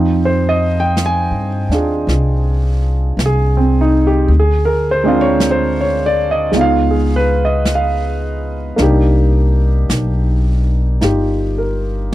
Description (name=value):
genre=jazz ballad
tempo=54 BPM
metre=4/4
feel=swing 67% on 8ths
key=unclear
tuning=A4 = 441 Hz
part: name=warm concert grand piano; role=accompaniment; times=0.0-12.1 s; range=F3 to Ab5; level=-16 LUFS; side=right 1 dB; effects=none
part: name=upright bass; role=bass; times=0.0-12.1 s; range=G1 to G2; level=-15 LUFS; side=equal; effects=none
part: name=jazz brush drum kit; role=drums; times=1.0-12.1 s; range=brushed snare drum, hi-hat, snare drum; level=-22 LUFS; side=right 1 dB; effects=none
room=little or no reverb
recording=dry, close 1970s-style studio recording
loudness=-12 LUFS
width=side -15 dB against mid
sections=0.0-12.1 A section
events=none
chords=0.0 Fm9; 4.3 Dm7b5; 6.5 Db9; 8.8 Cm9